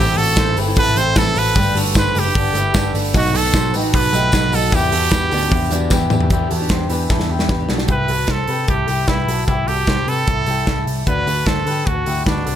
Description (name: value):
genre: jangly indie pop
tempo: 152 BPM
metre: 4/4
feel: straight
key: unclear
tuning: A4 = 440 Hz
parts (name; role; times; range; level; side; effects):
- bright trumpet; melody; 0.0-12.6 s; D4 to C5; -20 LUFS; right 3 dB; none
- picked twelve-string acoustic guitar; accompaniment; 0.0-7.9 s; A2 to B4; -24 LUFS; right 5 dB; none
- electric guitar through a small old amp; arpeggios; 0.0-12.6 s; D4 to C5; -24 LUFS; left 5 dB; ping-pong delay
- vintage muted picked electric bass; bass; 0.0-12.6 s; F#1 to D3; -21 LUFS; equal; none
- modern studio drum kit; drums; 0.2-12.6 s; hi-hat, kick drum, snare drum, toms; -19 LUFS; equal; none
- tambourine; percussion; 0.4-6.2 s; none; -33 LUFS; left 6 dB; none
room: small room reverb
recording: none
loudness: -15 LUFS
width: side -10 dB against mid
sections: 0.0-6.3 A section; 6.3-7.9 B section; 7.9-12.6 C section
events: drum fill 5.9-6.3, 7.1-7.9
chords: 0.0 Am; 1.6 Gadd9; 3.1 B7; 4.7 Em7; 7.9 C6; 11.1 D7